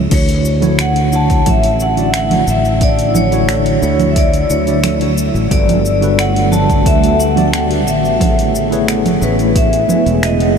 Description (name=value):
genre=sunset chillout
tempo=89 BPM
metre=4/4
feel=straight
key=D major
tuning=A4 = 440 Hz
part: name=sustaining fretless electric bass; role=bass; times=0.0-10.6 s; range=E1 to D2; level=-17 LUFS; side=equal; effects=wide subtle chorus
part: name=vibraphone with hard mallets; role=melody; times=0.1-10.6 s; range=B4 to A5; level=-17 LUFS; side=left 1 dB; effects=tape echo
part: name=tine electric piano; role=accompaniment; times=0.1-10.6 s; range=D3 to F#5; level=-19 LUFS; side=left 1 dB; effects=medium stereo tremolo, auto-pan, tape echo
part: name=shimmering ambient pad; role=sustained chords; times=1.3-10.6 s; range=C#3 to E5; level=-19 LUFS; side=right 1 dB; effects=chorus, built-in reverb, phaser
part: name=deep house drum kit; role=drums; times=0.1-10.5 s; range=congas, crash cymbal, finger snaps, hi-hat, shaker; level=-20 LUFS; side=right 3 dB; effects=none
part: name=electronic kick drum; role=drums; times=0.1-9.7 s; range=none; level=-15 LUFS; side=equal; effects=none
room=wet huge ambient reverb, RT60 7.9 s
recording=dreamy mix soaked in reverb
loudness=-11 LUFS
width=side -6 dB against mid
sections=0.1-10.6 A section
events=none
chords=0.1 Dmaj9; 5.5 Gmaj9; 7.9 Amaj9